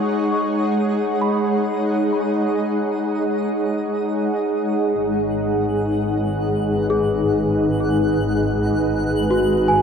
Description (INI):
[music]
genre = ambient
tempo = free time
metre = none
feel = none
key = G# minor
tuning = A4 = 441 Hz
[part]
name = shimmering ambient pad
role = sustained chords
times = 0.0-9.8 s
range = G#3 to F#5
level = -19 LUFS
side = equal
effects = chorus, built-in reverb
[part]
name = celesta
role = arpeggios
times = 0.0-9.8 s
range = F#4 to D#6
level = -24 LUFS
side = left 1 dB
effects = ping-pong delay
[part]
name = twinkling granular texture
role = texture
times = 0.0-9.8 s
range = D#6 to F#6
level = -38 LUFS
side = equal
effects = built-in reverb
[part]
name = warm studio double bass section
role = bass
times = 4.9-9.8 s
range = G#1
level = -24 LUFS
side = equal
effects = none
[sound]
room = wet cathedral reverb, RT60 5.2 s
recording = dark, warm production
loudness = -18 LUFS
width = side -6 dB against mid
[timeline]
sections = 0.0-4.9 A section; 4.9-9.8 B section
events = none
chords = 0.0 G#m7